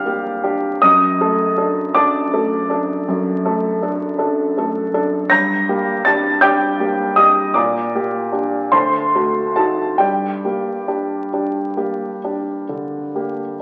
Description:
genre	classical, romantic nocturne for solo piano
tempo	44-55 BPM (dotted quarters)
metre	12/8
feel	rubato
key	G minor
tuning	A4 = 441 Hz
part	warm upright piano	solo	0.0-13.6 s	D2 to Bb6	-18 LUFS	equal	none
room	wet recital hall reverb, RT60 1.5 s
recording	very old 78 rpm record, vinyl crackle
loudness	-18 LUFS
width	mono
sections	0.0-13.6 A section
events	none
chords	0.0 Gm; 0.8 D/F#; 5.3 Gm; 7.5 Gm/Bb; 8.7 D7b9; 10.0 Gm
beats	| 0.82 1.95 3.08 4.20 | 5.31 6.42 7.54 8.72 | 10.00 11.33 12.68

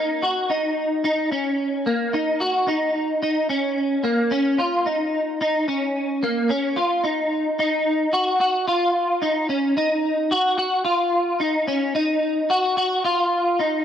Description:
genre	dream pop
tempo	110 BPM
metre	4/4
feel	straight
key	unclear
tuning	A4 = 440 Hz
part	electric guitar at the edge of break-up	solo	0.0-13.8 s	Bb3 to Gb4	-19 LUFS	equal	ensemble chorus, tape echo
room	light reverb, digital ambience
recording	dry, gritty hardware recording, cassette tape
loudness	-19 LUFS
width	side -9 dB against mid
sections	0.0-7.6 A section; 7.6-13.8 B section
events	none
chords	none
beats	0.50 | 1.04 1.59 2.13 2.68 | 3.23 3.77 4.32 4.86 | 5.41 5.95 6.50 7.04 | 7.59 8.13 8.68 9.22 | 9.77 10.32 10.86 11.41 | 11.95 12.50 13.04 13.59

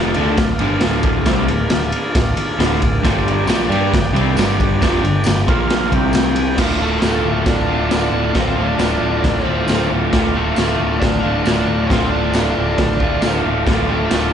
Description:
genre	garage rock duo or trio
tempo	136 BPM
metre	4/4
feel	straight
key	D minor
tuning	A4 = 441 Hz
part	combo organ	sustained chords	0.0-14.3 s	D4 to G5	-26 LUFS	right 2 dB	none
part	crunchy overdriven guitar	riff	0.0-14.3 s	D2 to G4	-19 LUFS	equal	slapback echo
part	growling picked electric bass	bass	0.0-14.3 s	D1 to G2	-22 LUFS	equal	overdrive
part	raw garage drum kit	drums	0.1-14.2 s	crash cymbal, kick drum, ride cymbal, snare drum	-19 LUFS	equal	none
part	tambourine	percussion	3.5-14.2 s	none	-35 LUFS	right 2 dB	none
part	octave-fuzz lead guitar	melody	6.8-14.3 s	A3 to D4	-23 LUFS	right 1 dB	distortion, slapback echo, digital delay
room	light reverb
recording	live gig heard through the venue's PA, club reverb, nothing above 10.6 kHz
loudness	-14 LUFS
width	side -8 dB against mid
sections	0.0-6.6 A section; 6.6-14.3 B section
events	none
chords	0.0 Dm; 3.0 G5; 5.5 Bb5; 5.9 C5; 6.6 Dm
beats	0.38 0.83 | 1.27 1.71 2.16 2.60 | 3.04 3.48 3.93 4.37 | 4.81 5.25 5.70 6.14 | 6.58 7.03 7.47 7.91 | 8.35 8.80 9.24 9.68 | 10.12 10.57 11.01 11.45 | 11.89 12.34 12.78 13.22 | 13.66 14.11

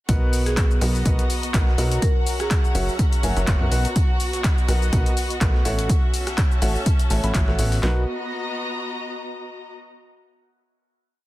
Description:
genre	piano house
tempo	124 BPM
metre	4/4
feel	swing 55% on 16ths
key	B major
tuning	A4 = 440 Hz
part	warm studio violin section	sustained chords	0.1-7.8 s	F#4 to F#5	-34 LUFS	equal	sidechain pumping
part	bright upright piano	riff	0.1-8.0 s	F#3 to B5	-29 LUFS	equal	sidechain pumping, dub echo
part	plucky analog bass	bass	0.1-8.1 s	F#1 to F#2	-22 LUFS	equal	tube saturation, sidechain pumping
part	breakbeat sampler-style drum kit	drums	0.1-7.8 s	hi-hat, snare drum, tambourine	-38 LUFS	equal	none
part	punchy analog drum machine	drums	0.1-8.0 s	handclaps, kick drum, snare drum	-20 LUFS	equal	none
part	punchy analog drum machine	drums	0.1-7.8 s	handclaps, hi-hat, rim click, shaker	-30 LUFS	left 2 dB	none
part	rich studio string section	texture	0.1-9.7 s	B3 to A#5	-31 LUFS	left 1 dB	sidechain pumping
part	marimba with medium mallets	melody	0.5-2.9 s	G#4 to A#4	-32 LUFS	right 1 dB	vintage 12-bit sampler grit, dub echo
room	little or no reverb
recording	dense, heavily limited modern master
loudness	-19 LUFS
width	side -17 dB against mid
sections	0.1-7.8 drop; 7.8-9.8 final chord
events	drop 0.1-7.8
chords	0.1 Bmaj7; 2.0 F#7; 3.7 Bmaj7; 5.7 A6; 7.8 Bmaj7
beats	| 0.09 0.57 1.05 1.54 | 2.02 2.51 2.99 3.48 | 3.96 4.44 4.93 5.41 | 5.89 6.38 6.86 7.35 | 7.83 8.31 8.80 9.28

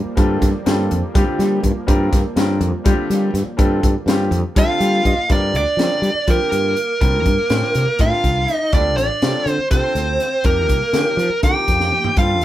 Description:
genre	electric jazz fusion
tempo	245 BPM (eighths)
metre	7/8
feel	straight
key	G minor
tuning	A4 = 441 Hz
part	lush unison pad	sustained chords	0.0-5.3 s	F3 to Bb3	-30 LUFS	right 2 dB	none
part	fretless electric bass	bass	0.0-12.4 s	A1 to G3	-20 LUFS	equal	none
part	bright baby grand piano	accompaniment	0.2-12.4 s	C3 to G5	-24 LUFS	left 2 dB	none
part	crisp fusion drum kit	drums	0.2-12.4 s	hi-hat, kick drum, snare drum, toms	-19 LUFS	equal	none
part	dark smooth lead guitar	melody	4.6-12.4 s	Bb4 to G5	-18 LUFS	right 1 dB	overdrive
part	clear tenor saxophone	second line	4.6-12.4 s	Bb3 to G4	-26 LUFS	right 2 dB	none
room	light reverb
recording	band playing live in one room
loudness	-15 LUFS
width	side -13 dB against mid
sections	0.0-5.3 A section; 5.3-12.4 B section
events	grand piano fill 4.6-5.3; drum fill 11.8-12.2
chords	0.0 Gm11; 5.3 Gm7; 7.0 C9sus4; 8.7 Dm7; 10.5 F9sus4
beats	| 0.17 0.42 0.66 0.91 1.15 1.39 1.64 | 1.88 2.13 2.37 2.61 2.86 3.10 3.35 | 3.59 3.83 4.08 4.32 4.57 4.81 5.06 | 5.30 5.55 5.79 6.04 6.28 6.53 6.77 | 7.02 7.26 7.51 7.75 8.00 8.24 8.49 | 8.73 8.98 9.23 9.47 9.72 9.96 10.21 | 10.45 10.70 10.95 11.19 11.44 11.68 11.93 | 12.17 12.42

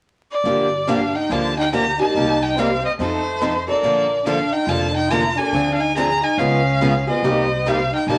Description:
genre	acoustic string swing (jazz manouche)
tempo	142 BPM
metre	4/4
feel	swing 64% on 8ths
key	G minor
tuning	A4 = 435 Hz
part	clear violin	melody	0.3-8.2 s	C5 to Bb5	-23 LUFS	equal	none
part	picked steel-string acoustic guitar	accompaniment	0.4-8.2 s	C3 to A4	-29 LUFS	equal	none
part	upright bass	bass	0.4-8.2 s	F1 to F2	-29 LUFS	equal	none
part	picked steel-string acoustic guitar	accompaniment	0.5-8.2 s	C3 to A4	-25 LUFS	equal	none
part	warm violin	second line	0.9-8.2 s	A3 to Ab4	-26 LUFS	equal	none
room	wet studio reverb, RT60 0.8 s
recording	vinyl crackle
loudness	-19 LUFS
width	mono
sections	0.5-8.2 A section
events	none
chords	0.5 Gm7; 2.1 Cm7; 3.0 F7; 3.8 Bbmaj7; 5.5 Dm7b5; 6.4 C#7; 7.2 Cm7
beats	0.03 | 0.45 0.88 1.30 1.72 | 2.15 2.57 2.99 3.42 | 3.84 4.26 4.69 5.11 | 5.53 5.96 6.38 6.80 | 7.23 7.65 8.07

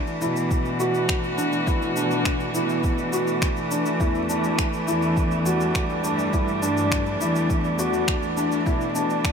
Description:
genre	piano and strings electronica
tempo	103 BPM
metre	4/4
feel	straight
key	E minor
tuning	A4 = 440 Hz
part	muted string quartet	sustained chords	0.0-9.3 s	E3 to F#4	-25 LUFS	right 1 dB	stereo widening, sidechain pumping
part	electronic shaker and finger snaps	drums	0.1-9.3 s	none	-32 LUFS	left 1 dB	none
part	felt-muted upright piano	riff	0.2-9.3 s	D4 to F#4	-26 LUFS	left 1 dB	lush chorus, analog delay
part	warm chamber cello section	bass	0.2-8.9 s	E2 to B2	-30 LUFS	left 1 dB	sidechain pumping
part	electronic kick drum	drums	0.5-9.3 s	none	-26 LUFS	equal	none
room	moderate huge ambient reverb, RT60 9.0 s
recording	dreamy mix soaked in reverb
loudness	-21 LUFS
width	side -6 dB against mid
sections	0.0-9.3 A section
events	none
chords	0.0 D69/B; 4.0 Emadd9; 8.7 D69/B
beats	0.51 1.09 | 1.67 2.26 2.84 3.42 | 4.00 4.59 5.17 5.75 | 6.33 6.92 7.50 8.08 | 8.66 9.25

